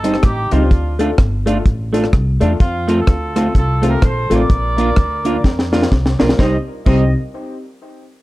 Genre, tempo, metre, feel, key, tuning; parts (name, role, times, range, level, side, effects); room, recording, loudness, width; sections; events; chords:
ska; 126 BPM; 4/4; swing 60% on 8ths; C dorian; A4 = 440 Hz
clear horn section; melody; 0.0-7.1 s; C4 to Eb5; -23 LUFS; right 1 dB; plate reverb
semi-hollow electric guitar; accompaniment; 0.0-7.0 s; G3 to F4; -19 LUFS; right 2 dB
warm upright piano; stabs; 0.0-7.1 s; A3 to C5; -22 LUFS; left 3 dB; tape echo
upright bass; bass; 0.0-7.1 s; G1 to F2; -18 LUFS; equal
deep reggae drum kit; drums; 0.0-7.0 s; crash cymbal, hi-hat, kick drum, rim click, snare drum; -14 LUFS; equal
light reverb; dark, warm production; -13 LUFS; side -18 dB against mid
0.0-6.4 A section; 6.4-8.2 B section
drum fill 5.4-6.4
0.0 Cm; 0.7 Dm; 2.6 F; 4.5 Bb; 6.4 Cm